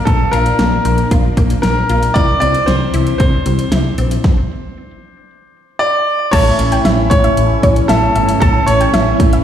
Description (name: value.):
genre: synth-pop.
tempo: 115 BPM.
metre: 4/4.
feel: straight.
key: unclear.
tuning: A4 = 444 Hz.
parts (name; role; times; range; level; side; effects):
clear grand piano; melody; 0.0-9.4 s; A4 to D5; -16 LUFS; equal; ping-pong delay.
string machine, full ensemble; sustained chords; 0.0-9.4 s; E3 to D4; -23 LUFS; equal; ensemble chorus.
resonant blip pluck; arpeggios; 0.1-4.2 s; F3 to F4; -23 LUFS; left 5 dB; chorus, ping-pong delay.
woody fretless electric bass; bass; 0.1-9.4 s; G1 to A2; -16 LUFS; equal; none.
pop drum kit; drums; 0.1-9.4 s; crash cymbal, hi-hat, kick drum, snare drum; -16 LUFS; equal; overdrive.
soft round pluck; second line; 6.3-9.4 s; C#5 to A5; -20 LUFS; left 1 dB; chorus, ping-pong delay.
analog synth brass; accompaniment; 6.3-9.4 s; A3 to E4; -19 LUFS; right 2 dB; chorus, phaser.
room: moderate lush hall reverb, RT60 1.8 s, digital ambience.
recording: played on a big sound system in a bare room, large studio reverb.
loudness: -11 LUFS.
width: side -9 dB against mid.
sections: 0.0-6.3 A section; 6.3-9.4 B section.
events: stop 4.2-6.3.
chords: 0.0 Bb; 2.2 Cadd9; 6.3 A.